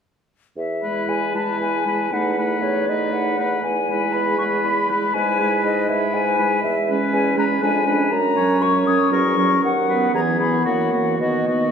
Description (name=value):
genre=quick classical-period movement for wind quintet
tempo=119 BPM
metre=3/4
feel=rubato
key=E major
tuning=A4 = 439 Hz
part: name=concert flute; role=melody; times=0.6-11.7 s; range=C#5 to D#6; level=-22 LUFS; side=left 5 dB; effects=none
part: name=dark bassoon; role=bass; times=0.6-11.7 s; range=D#2 to B2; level=-24 LUFS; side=right 3 dB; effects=none
part: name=clear oboe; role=second line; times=0.8-11.7 s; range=F#4 to C#5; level=-25 LUFS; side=left 2 dB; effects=none
part: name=bright clarinet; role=accompaniment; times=0.8-11.7 s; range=A#3 to E4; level=-25 LUFS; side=right 4 dB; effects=none
part: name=mellow French horn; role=accompaniment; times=0.8-11.7 s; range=D#3 to A3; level=-28 LUFS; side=right 1 dB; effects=none
room=wet church reverb, RT60 3.3 s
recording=recorded in a church or concert hall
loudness=-17 LUFS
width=side -7 dB against mid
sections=0.6-11.7 A section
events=none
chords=0.6 E; 2.1 B7/E; 3.6 E; 5.2 E/G#; 6.6 C#m7/E; 7.6 Fdim7; 8.1 F#; 9.1 F#7/E; 9.6 B/D#; 10.1 E; 10.7 F#7; 11.2 B